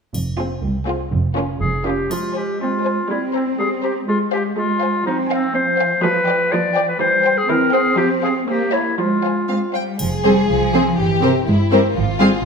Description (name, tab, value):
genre	cinematic, playful, whimsical film cue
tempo	122 BPM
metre	2/4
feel	straight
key	F minor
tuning	A4 = 442 Hz
part	rich studio double bass section	bass	0.1-2.0, 10.0-12.3 s	F1 to C2	-22 LUFS	right 2 dB	none
part	warm studio cello section	bass	0.1-12.3 s	C2 to C4	-22 LUFS	right 1 dB	none
part	triangle	percussion	0.1-3.1, 10.0-10.9 s	none	-34 LUFS	equal	none
part	warm studio violin section	melody	0.4-12.4 s	E4 to Bb5	-26 LUFS	left 2 dB	none
part	warm symphonic violin section	second line	0.4-12.3 s	F4 to G5	-23 LUFS	left 2 dB	none
part	warm studio viola section	accompaniment	0.4-12.3 s	E3 to Ab4	-24 LUFS	right 2 dB	none
part	bright clarinet	second line	1.6-9.7 s	C4 to D5	-19 LUFS	left 1 dB	none
room	wet recital hall reverb, RT60 1.5 s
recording	none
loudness	-16 LUFS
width	side -5 dB against mid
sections	0.1-2.1 A section; 2.1-10.0 B section; 10.0-12.4 B section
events	none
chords	0.1 Fm; 1.1 Bbm/F; 2.1 Fm; 3.1 C5/G; 4.1 Fm/Ab; 5.1 Fm; 6.0 G7/F; 7.0 C/E; 8.0 Fm; 8.5 C7b9/Bb; 9.0 Fm; 11.0 C/G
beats	| 0.14 0.63 | 1.12 1.61 | 2.11 2.61 | 3.10 3.59 | 4.08 4.57 | 5.05 5.54 | 6.03 6.51 | 7.00 7.49 | 7.98 8.48 | 8.99 9.49 | 10.00 10.49 | 10.98 11.47 | 11.96 12.45